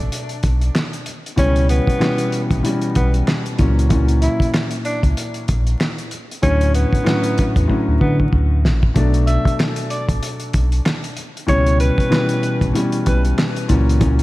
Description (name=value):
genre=hip hop, boom-bap hip-hop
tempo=95 BPM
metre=4/4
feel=swing 59% on 16ths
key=B minor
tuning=A4 = 440 Hz
part: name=dark concert grand piano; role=accompaniment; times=0.0-14.2 s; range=A2 to D4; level=-20 LUFS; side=left 1 dB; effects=none
part: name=sub bass with octave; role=bass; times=0.0-14.2 s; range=A1 to D3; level=-16 LUFS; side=equal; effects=none
part: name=cloth-damped thuddy drum kit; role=drums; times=0.1-14.2 s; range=handclaps, hi-hat, kick drum, snare drum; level=-20 LUFS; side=equal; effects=none
part: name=breathy tenor saxophone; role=melody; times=1.4-13.2 s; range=B3 to E5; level=-24 LUFS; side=equal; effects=ping-pong delay
room=light reverb, small room ambience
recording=vinyl crackle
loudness=-15 LUFS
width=side -18 dB against mid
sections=0.0-9.0 A section; 9.0-14.2 B section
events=drum fill 7.7-9.0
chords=0.0 Bm7; 1.4 C#m7b5; 3.6 F#7/C#; 6.4 Dmaj7; 9.0 Bm7; 11.5 C#m7b5; 13.7 F#7/C#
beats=0.12 0.75 | 1.38 2.01 2.64 3.27 | 3.91 4.54 5.17 5.80 | 6.43 7.06 7.70 8.33 | 8.96 9.59 10.22 10.85 | 11.48 12.12 12.75 13.38 | 14.01